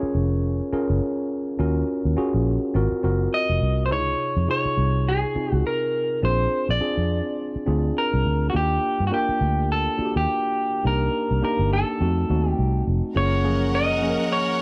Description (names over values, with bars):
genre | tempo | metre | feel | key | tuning
soul | 104 BPM | 4/4 | swing 58% on 16ths | unclear | A4 = 441 Hz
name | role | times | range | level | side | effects
tine electric piano | accompaniment | 0.0-14.6 s | C3 to Db5 | -28 LUFS | equal | tube saturation
vintage muted fingered electric bass | bass | 0.0-14.2 s | F1 to G2 | -25 LUFS | equal | none
electric guitar through a small old amp | melody | 3.3-14.6 s | Gb4 to Eb5 | -27 LUFS | equal | none
rich studio violin section | second line | 13.2-14.6 s | Db4 to Gb5 | -32 LUFS | equal | none
vibraphone with soft mallets | texture | 13.5-14.2 s | Bb4 | -38 LUFS | equal | none
room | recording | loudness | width
small room ambience | none | -23 LUFS | mono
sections
0.0-13.2 A section; 13.2-14.6 B section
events
none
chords
0.0 Gbmaj7 (rootless); 1.6 Ebm7; 2.8 Ab13 (rootless); 3.9 Dbmaj7; 6.2 Bb9; 8.5 Ebmaj7; 10.9 Cm7; 12.0 F7b9; 13.2 Gbmaj7